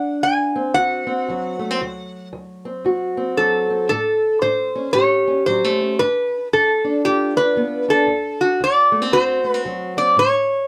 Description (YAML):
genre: acoustic country blues, solo or duo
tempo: 115 BPM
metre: 4/4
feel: swing 60% on 8ths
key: D mixolydian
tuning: A4 = 436 Hz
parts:
  - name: metal-body resonator slide guitar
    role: melody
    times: 0.0-10.7 s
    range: F#4 to G#5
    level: -20 LUFS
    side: equal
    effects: none
  - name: fingerpicked steel-string acoustic guitar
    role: accompaniment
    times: 0.0-10.6 s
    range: D2 to G4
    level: -24 LUFS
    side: equal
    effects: none
room: moderate studio reverb, RT60 0.5 s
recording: dark, warm production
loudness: -19 LUFS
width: mono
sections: 0.0-10.7 A section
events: none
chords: 0.0 D7; 3.9 A7; 6.0 G7; 8.1 D7; 10.2 A